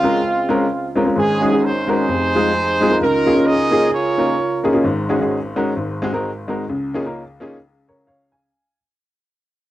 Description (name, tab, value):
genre	gospel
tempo	130 BPM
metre	4/4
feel	swing 57% on 8ths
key	Db major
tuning	A4 = 440 Hz
part	clear horn section	melody	0.0-4.8 s	Ab3 to Eb5	-17 LUFS	right 2 dB	cassette tape
part	warm upright piano	accompaniment	0.0-8.8 s	F1 to Ab5	-18 LUFS	left 1 dB	cassette tape
room	moderate studio reverb, RT60 0.5 s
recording	home recording on cassette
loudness	-15 LUFS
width	side -14 dB against mid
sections	0.0-4.9 A section; 4.9-8.5 B section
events	fade-out 4.9-8.5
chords	0.0 Dbmaj7; 1.2 Ab7sus4; 2.1 Fm7; 3.0 Db69; 4.9 Ab7sus4; 5.8 Ab7; 6.7 Db69